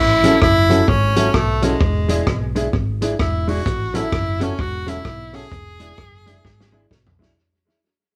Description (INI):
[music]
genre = ska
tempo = 130 BPM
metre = 4/4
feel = swing 62% on 8ths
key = A major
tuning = A4 = 441 Hz
[part]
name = bright tenor saxophone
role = melody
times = 0.0-6.9 s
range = G#3 to G#4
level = -22 LUFS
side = equal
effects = none
[part]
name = hollow-body short-scale picked electric bass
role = bass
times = 0.0-7.3 s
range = E1 to B1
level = -25 LUFS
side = equal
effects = none
[part]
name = hollow-body jazz guitar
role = accompaniment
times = 0.2-7.3 s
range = F#3 to E4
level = -26 LUFS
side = equal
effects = tape echo
[part]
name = dark upright piano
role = stabs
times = 0.2-7.3 s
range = C#4 to A4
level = -27 LUFS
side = equal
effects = none
[part]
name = vintage drum kit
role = drums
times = 0.2-7.3 s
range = hi-hat, kick drum, rim click, snare drum, toms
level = -24 LUFS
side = equal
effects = none
[sound]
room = moderate studio reverb, RT60 0.8 s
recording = band playing live in one room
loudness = -18 LUFS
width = mono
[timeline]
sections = 0.0-7.4 A section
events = fade-out 0.0-7.4; drum fill 6.4-7.4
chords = 0.0 A6; 1.8 E7; 3.7 A6; 5.5 E7